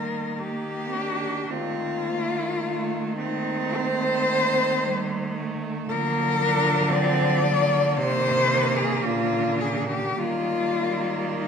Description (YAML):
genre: classical, lyrical piece for cello ensemble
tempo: 49-58 BPM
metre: 4/4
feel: rubato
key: Eb major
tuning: A4 = 436 Hz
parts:
  - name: rich cello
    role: melody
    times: 0.0-11.5 s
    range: Eb4 to D5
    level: -24 LUFS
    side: left 3 dB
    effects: none
  - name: rich cello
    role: second line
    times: 0.0-11.5 s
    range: G3 to D4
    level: -29 LUFS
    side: right 7 dB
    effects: none
  - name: clear cello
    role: accompaniment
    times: 0.0-11.5 s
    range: D3 to Bb3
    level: -32 LUFS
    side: left 1 dB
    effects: none
  - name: rich cello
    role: bass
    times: 0.0-11.5 s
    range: Bb2 to Eb3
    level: -30 LUFS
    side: right 2 dB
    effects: none
room: wet recital hall reverb, RT60 1.8 s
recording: minimal, uncompressed stereo recording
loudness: -22 LUFS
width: side -6 dB against mid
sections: 0.0-11.5 A section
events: none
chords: 0.0 Eb; 1.5 F7/Eb; 5.9 Bb/D; 8.0 Cm7; 9.1 Bb; 10.2 Eb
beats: 0.39 | 1.51 2.61 3.77 4.84 | 5.89 6.92 7.97 9.06 | 10.20 11.42